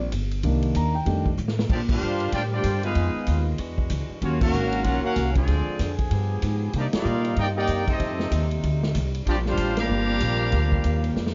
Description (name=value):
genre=jazz, big band swing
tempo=190 BPM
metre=4/4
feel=swing 62% on 8ths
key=Bb major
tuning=A4 = 440 Hz
part: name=upright bass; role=bass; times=0.0-11.3 s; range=G1 to C3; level=-27 LUFS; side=equal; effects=none
part: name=swinging big-band drum kit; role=drums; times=0.1-11.3 s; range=crash cymbal, hi-hat, kick drum, ride cymbal, snare drum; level=-32 LUFS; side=equal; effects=none
part: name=warm grand piano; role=accompaniment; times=0.4-1.3 s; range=Eb3 to Bb5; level=-28 LUFS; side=equal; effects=none
part: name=clear trumpet section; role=melody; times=1.7-11.3 s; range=Bb3 to Bb5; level=-32 LUFS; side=equal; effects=none
part: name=clear trombone section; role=second line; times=1.7-11.3 s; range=F3 to G4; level=-30 LUFS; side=equal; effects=none
part: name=warm saxophone section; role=sustained chords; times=1.7-11.3 s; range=C3 to Bb4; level=-36 LUFS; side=equal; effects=none
room=moderate club ambience, RT60 0.5 s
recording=dark, warm production, nothing above 7.5 kHz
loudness=-24 LUFS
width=mono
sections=0.0-1.7 A section; 1.7-11.3 B section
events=grand piano solo 0.0-1.7; drum fill 1.4-1.7, 11.2; band accent 1.9, 4.4, 6.9, 9.7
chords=0.4 Cm7; 1.1 F13; 1.7 Bb69; 3.0 Fm7b5; 3.6 E9; 4.2 Ebm9; 5.5 Dm7b5; 6.1 G7b9; 6.7 Cm9; 8.0 F13; 9.3 Bb69